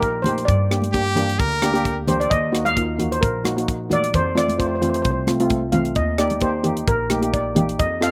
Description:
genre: calypso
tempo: 131 BPM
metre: 4/4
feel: swing 54% on 16ths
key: unclear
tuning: A4 = 439 Hz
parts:
  - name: steel pan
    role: melody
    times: 0.0-8.1 s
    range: Bb4 to F5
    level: -25 LUFS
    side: equal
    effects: slapback echo
  - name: steel pan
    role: accompaniment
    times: 0.0-8.1 s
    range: A3 to A4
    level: -25 LUFS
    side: equal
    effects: none
  - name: upright bass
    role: bass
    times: 0.0-8.1 s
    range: Bb1 to G2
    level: -28 LUFS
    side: equal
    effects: none
  - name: tight funk drum kit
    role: drums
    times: 0.0-8.1 s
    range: hi-hat, kick drum, rim click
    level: -27 LUFS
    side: equal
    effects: none
  - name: congas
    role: percussion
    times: 0.2-7.7 s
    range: none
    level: -28 LUFS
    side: equal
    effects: none
  - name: brilliant trumpet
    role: second line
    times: 0.9-2.0 s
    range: G4 to Bb4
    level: -25 LUFS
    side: equal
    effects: slapback echo
room: little or no reverb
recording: recorded outdoors, with no room sound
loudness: -20 LUFS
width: mono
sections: 0.0-8.1 A section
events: steel pan solo 0.0-8.1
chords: 0.5 Gm; 2.3 Ebmadd9; 4.1 F; 6.0 Ebmaj7

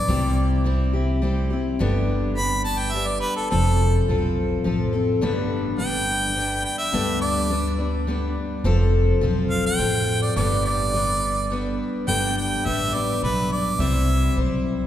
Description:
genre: honky-tonk and classic country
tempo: 105 BPM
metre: 3/4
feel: straight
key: G mixolydian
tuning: A4 = 440 Hz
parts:
  - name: bright harmonica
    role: melody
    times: 0.0-14.4 s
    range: A4 to B5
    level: -25 LUFS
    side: right 1 dB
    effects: none
  - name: picked steel-string acoustic guitar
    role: accompaniment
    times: 0.0-14.9 s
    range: G2 to C5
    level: -24 LUFS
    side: left 3 dB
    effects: none
  - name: upright bass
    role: bass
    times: 0.1-14.9 s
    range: F1 to D2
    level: -23 LUFS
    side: right 1 dB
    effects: none
room: wet church reverb, RT60 2.8 s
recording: recorded in a church or concert hall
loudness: -20 LUFS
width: side -11 dB against mid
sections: 0.0-12.1 A section; 12.1-14.9 B section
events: harmonica solo 0.0-12.1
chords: 0.1 C; 1.8 G; 3.5 F; 5.2 G; 8.6 F; 10.4 G; 13.8 C

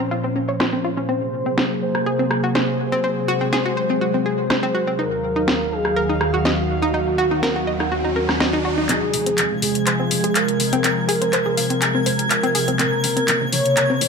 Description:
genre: progressive house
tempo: 123 BPM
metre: 4/4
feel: straight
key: unclear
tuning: A4 = 439 Hz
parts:
  - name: airy breathy pad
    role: sustained chords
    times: 0.0-14.1 s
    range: Eb2 to F5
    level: -23 LUFS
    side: equal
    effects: chorus
  - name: analog pluck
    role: arpeggios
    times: 0.0-13.9 s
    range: C4 to F5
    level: -24 LUFS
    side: left 1 dB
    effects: chorus, tape echo
  - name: house drum kit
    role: drums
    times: 0.6-14.1 s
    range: handclaps, hi-hat, rim click, snare drum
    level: -22 LUFS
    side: equal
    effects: low-pass filter on cymbals, low-pass filter on snare, low-pass filter on hats, low-pass filter on room
  - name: warm velvety synth lead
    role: melody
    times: 1.1-14.1 s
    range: Gb4 to Db5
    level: -23 LUFS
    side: equal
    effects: chorus, ping-pong delay
  - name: riser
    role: sound effects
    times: 6.7-8.9 s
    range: none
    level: -29 LUFS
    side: equal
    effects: none
  - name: plucky analog bass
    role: bass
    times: 8.9-14.1 s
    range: F1 to C2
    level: -34 LUFS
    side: equal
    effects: none
  - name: twinkling granular texture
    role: texture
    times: 9.5-14.1 s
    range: Ab6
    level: -28 LUFS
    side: equal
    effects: built-in reverb
room: moderate lush hall reverb, RT60 2.1 s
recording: none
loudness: -17 LUFS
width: side -5 dB against mid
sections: 0.0-8.9 A section; 8.9-14.1 B section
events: filter sweep on synth pluck 0.0-8.9, 8.9-14.1; filter sweep on analog synth pad 0.0-8.9; riser 6.7-8.9; build-up 8.9-14.1; drum fill 8.9-14.1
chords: 0.0 Bbmadd9; 1.1 Ab7/C; 5.0 Ebmadd9; 8.9 Fm; 12.8 Bbmadd9

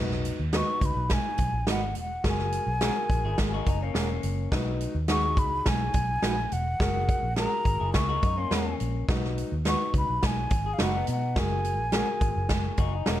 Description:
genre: uptempo 1960s-style soul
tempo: 105 BPM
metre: 4/4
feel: straight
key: B major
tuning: A4 = 439 Hz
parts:
  - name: warm baby grand piano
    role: accompaniment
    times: 0.0-12.8 s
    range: D#4 to B4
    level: -35 LUFS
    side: left 4 dB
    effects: none
  - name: vintage muted fingered electric bass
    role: bass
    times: 0.0-13.2 s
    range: E1 to B2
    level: -30 LUFS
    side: equal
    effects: none
  - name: swinging big-band drum kit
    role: drums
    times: 0.1-13.2 s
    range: hi-hat, kick drum, snare drum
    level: -28 LUFS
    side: equal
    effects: none
  - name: electric guitar through a small old amp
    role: stabs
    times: 0.5-13.2 s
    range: C#4 to F#5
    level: -35 LUFS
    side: right 4 dB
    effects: none
  - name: breathy mellow silver concert flute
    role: melody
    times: 0.6-13.1 s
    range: E#5 to C#6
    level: -30 LUFS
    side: equal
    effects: none
  - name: electric guitar through a small old amp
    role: riff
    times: 3.2-13.2 s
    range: A#3 to G#4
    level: -35 LUFS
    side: left 9 dB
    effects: spring reverb
room: light reverb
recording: dark, warm production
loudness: -24 LUFS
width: side -12 dB against mid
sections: 0.0-13.2 A section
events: none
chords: 0.0 B; 6.8 F#add9; 9.1 B; 11.4 F#add9

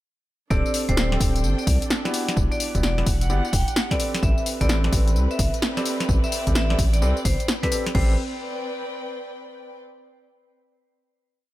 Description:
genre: UK garage, two-step garage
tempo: 129 BPM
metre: 4/4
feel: swing 64% on 16ths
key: A dorian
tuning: A4 = 440 Hz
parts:
  - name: vibraphone with hard mallets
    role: melody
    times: 0.5-8.1 s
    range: B4 to G5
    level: -31 LUFS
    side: left 1 dB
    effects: diffuse ambient delay
  - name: warm grand piano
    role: stabs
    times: 0.5-8.1 s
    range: B3 to D5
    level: -29 LUFS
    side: right 1 dB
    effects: tape echo
  - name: saturated sub bass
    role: bass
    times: 0.5-8.2 s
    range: D1 to C2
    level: -22 LUFS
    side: equal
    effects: tube saturation
  - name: electronic kick drum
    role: drums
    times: 0.5-8.1 s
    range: none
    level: -25 LUFS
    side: equal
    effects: none
  - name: punchy analog drum machine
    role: drums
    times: 0.5-8.1 s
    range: crash cymbal, hi-hat, snare drum, tambourine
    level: -27 LUFS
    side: left 1 dB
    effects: none
  - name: dark chamber string section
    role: texture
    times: 0.5-9.8 s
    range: C4 to G5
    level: -34 LUFS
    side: equal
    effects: sidechain pumping
room: studio ambience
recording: none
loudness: -20 LUFS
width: side -16 dB against mid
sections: 0.5-7.9 drop; 7.9-9.8 final chord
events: drop 0.5-7.9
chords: 0.5 D7sus4; 4.0 Am11

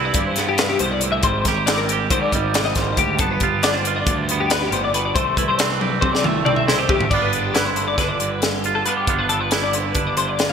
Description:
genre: math rock and midwest emo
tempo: 275 BPM (eighths)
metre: 9/8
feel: straight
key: unclear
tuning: A4 = 440 Hz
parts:
  - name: twangy electric guitar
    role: accompaniment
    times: 0.0-10.5 s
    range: G2 to G4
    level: -23 LUFS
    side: right 7 dB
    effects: wide subtle chorus
  - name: twelve-string electric guitar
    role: arpeggios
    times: 0.0-10.5 s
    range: G4 to F5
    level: -22 LUFS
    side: left 5 dB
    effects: ensemble chorus, ping-pong delay
  - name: fuzz picked electric bass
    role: bass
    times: 0.0-10.5 s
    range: G1 to C3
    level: -26 LUFS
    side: equal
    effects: overdrive
  - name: crisp fusion drum kit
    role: drums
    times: 0.1-10.5 s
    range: crash cymbal, hi-hat, kick drum, snare drum, toms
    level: -21 LUFS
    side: equal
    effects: gated reverb
room: moderate lush hall reverb, RT60 1.9 s, small room ambience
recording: bright 1980s-style digital production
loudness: -17 LUFS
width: side -7 dB against mid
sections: 0.0-7.1 A section; 7.1-10.5 B section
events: drum fill 5.8-7.1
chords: 0.0 Cmaj7; 1.2 Abmaj7; 3.2 G7; 5.2 C6; 7.1 G7

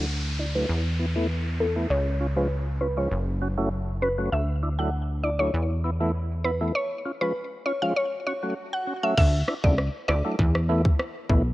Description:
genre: dancehall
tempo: 99 BPM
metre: 4/4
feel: straight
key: unclear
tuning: A4 = 440 Hz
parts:
  - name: mallet-like synth pluck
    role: melody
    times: 0.0-10.2 s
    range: A4 to F#5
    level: -28 LUFS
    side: equal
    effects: chorus, low-pass filter, ping-pong delay
  - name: percussive tonewheel organ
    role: accompaniment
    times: 0.0-11.4 s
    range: E3 to F#4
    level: -30 LUFS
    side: equal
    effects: overdrive, chorus vibrato, slow rotary speaker, sidechain pumping, low-pass filter
  - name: plucky analog bass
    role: bass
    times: 0.0-11.5 s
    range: F#1 to E2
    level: -26 LUFS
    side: equal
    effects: none
  - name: downlifter and swell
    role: sound effects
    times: 0.0-9.2 s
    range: none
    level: -38 LUFS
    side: equal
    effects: none
  - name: island pop drum kit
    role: drums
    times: 9.2-11.4 s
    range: crash cymbal, kick drum, rim click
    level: -24 LUFS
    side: equal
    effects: none
room: light reverb, digital ambience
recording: worn, warbling old tape, cassette tape, warbly pitch drift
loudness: -23 LUFS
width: side -17 dB against mid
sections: 0.0-9.2 A section; 9.2-11.5 B section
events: filter sweep 0.0-9.2; swell 8.1-9.2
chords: 0.0 Dadd9; 0.7 Esus4; 1.9 C#; 3.1 F#m; 4.3 Dadd9; 5.5 Esus4; 6.8 C#; 8.0 F#m; 9.2 Dadd9; 10.4 Esus4

